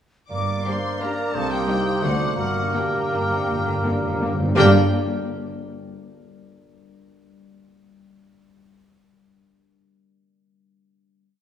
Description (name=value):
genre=classical, orchestral ballroom waltz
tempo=154-189 BPM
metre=3/4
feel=rubato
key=G minor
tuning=A4 = 440 Hz
part: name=clear studio violin section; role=melody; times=0.3-4.8 s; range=F#5 to D6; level=-31 LUFS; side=left 2 dB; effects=none
part: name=mellow clarinet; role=second line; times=0.3-4.7 s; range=F#4 to D5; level=-28 LUFS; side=right 2 dB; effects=none
part: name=mellow hollow silver concert flute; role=second line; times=0.3-4.8 s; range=D6 to Eb6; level=-33 LUFS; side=left 6 dB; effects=none
part: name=warm oboe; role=second line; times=0.3-4.7 s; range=Bb4 to D5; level=-29 LUFS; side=right 1 dB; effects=none
part: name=warm bassoon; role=accompaniment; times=0.3-4.7 s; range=A3 to Bb3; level=-30 LUFS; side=right 2 dB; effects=none
part: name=concert harp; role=arpeggios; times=0.3-4.8 s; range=G2 to D5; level=-28 LUFS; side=left 5 dB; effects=none
part: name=clear studio cello section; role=bass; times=0.3-4.8 s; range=C2 to D3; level=-27 LUFS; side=right 2 dB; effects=none
part: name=rich studio double bass section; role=bass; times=0.3-4.8 s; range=G1 to D2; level=-28 LUFS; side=right 5 dB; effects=none
part: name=timpani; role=percussion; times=0.3-4.7 s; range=G2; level=-28 LUFS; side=equal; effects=none
part: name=clear studio violin section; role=second line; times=0.6-4.8 s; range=Bb3 to G4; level=-32 LUFS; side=left 2 dB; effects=none
part: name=rich studio viola section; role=accompaniment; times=0.7-4.8 s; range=D3 to Bb3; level=-28 LUFS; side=right 1 dB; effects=none
part: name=mellow French horn section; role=sustained chords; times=0.7-4.7 s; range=Bb3 to Eb4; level=-32 LUFS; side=left 2 dB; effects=none
room=wet scoring stage reverb, RT60 2.0 s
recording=studio reverb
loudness=-19 LUFS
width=side -9 dB against mid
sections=0.3-4.6 A section; 4.6-5.6 final chord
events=timpani fill 2.4-4.6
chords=0.3 Gm; 1.3 Cm7; 2.0 D7; 2.4 Gm